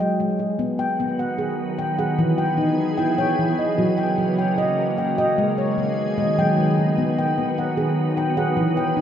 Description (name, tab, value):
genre	world meditative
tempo	75 BPM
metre	4/4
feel	straight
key	unclear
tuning	A4 = 440 Hz
part	handpan	arpeggios	0.0-9.0 s	E3 to G5	-20 LUFS	equal	tape echo
part	soft additive organ-like pad	sustained chords	1.1-9.0 s	C#3 to G#4	-24 LUFS	right 1 dB	ensemble chorus, built-in reverb
room	wet recital hall reverb, RT60 1.6 s, studio reverb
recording	dark, warm production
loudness	-19 LUFS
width	side -9 dB against mid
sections	0.0-9.0 A section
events	none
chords	0.0 G#5; 0.6 B; 2.2 E; 3.8 F#; 5.4 G#m; 7.0 B